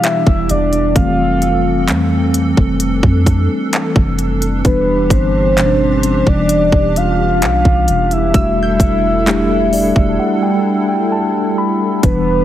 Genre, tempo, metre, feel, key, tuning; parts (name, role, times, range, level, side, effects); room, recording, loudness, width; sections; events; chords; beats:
contemporary R&B; 65 BPM; 4/4; straight; E phrygian; A4 = 445 Hz
soft octave-layered synth lead; melody; 0.0-12.4 s; B4 to F5; -17 LUFS; equal; chorus, phaser, digital delay
mellow tine electric piano; accompaniment; 0.0-12.4 s; B2 to B5; -17 LUFS; left 2 dB; fast stereo tremolo
hollow soft pad; sustained chords; 0.0-12.4 s; E3 to A4; -22 LUFS; right 2 dB; ensemble chorus
trap drum kit; drums; 0.0-12.2 s; handclaps, hi-hat, kick drum; -14 LUFS; equal
soft 808-style bass; bass; 0.3-12.4 s; E1 to F2; -18 LUFS; equal
glassy wavetable pluck; texture; 5.6-10.1 s; E6 to A6; -30 LUFS; right 2 dB; chorus, digital delay
little or no reverb; heavily compressed radio sound; -12 LUFS; side -12 dB against mid
0.0-12.0 A section
tine electric piano fill 9.3-12.0; break 10.2-12.0
0.0 Em7; 1.0 Fmaj7; 4.6 Em7; 8.3 Em11
0.03 | 0.96 1.88 2.80 3.73 | 4.65 5.57 6.50 7.42 | 8.34 9.27 10.19 11.11 | 12.03